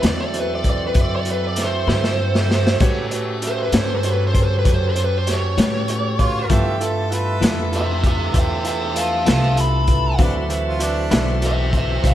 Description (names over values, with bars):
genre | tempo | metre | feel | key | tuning
slow blues | 65 BPM (dotted quarters) | 12/8 | straight | D mixolydian | A4 = 441 Hz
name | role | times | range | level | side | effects
smooth overdriven lead guitar | melody | 0.0-12.1 s | G4 to B5 | -23 LUFS | right 1 dB | none
clean electric guitar | accompaniment | 0.0-11.3 s | G2 to B4 | -27 LUFS | left 5 dB | tremolo
warm concert grand piano | accompaniment | 0.0-12.1 s | F4 to E5 | -26 LUFS | right 4 dB | slapback echo
tonewheel organ | sustained chords | 0.0-12.1 s | E3 to B4 | -31 LUFS | left 1 dB | slow rotary speaker
warm saxophone section | sustained chords | 0.0-12.1 s | E3 to A4 | -32 LUFS | left 1 dB | none
upright bass | bass | 0.0-12.1 s | B1 to A2 | -22 LUFS | equal | none
crunchy breakbeat drum kit | drums | 0.0-12.1 s | crash cymbal, hi-hat, kick drum, snare drum | -20 LUFS | equal | none
warm harmonica | second line | 6.2-11.3 s | D4 to B4 | -29 LUFS | right 2 dB | slapback echo, tape echo
room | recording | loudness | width
moderate scoring stage reverb, RT60 1.9 s, small room ambience | big arena sound | -16 LUFS | side -12 dB against mid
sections
0.0-12.1 A section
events
drum fill 1.9-2.8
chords
0.0 D13; 2.8 A13; 6.5 G13; 10.2 D13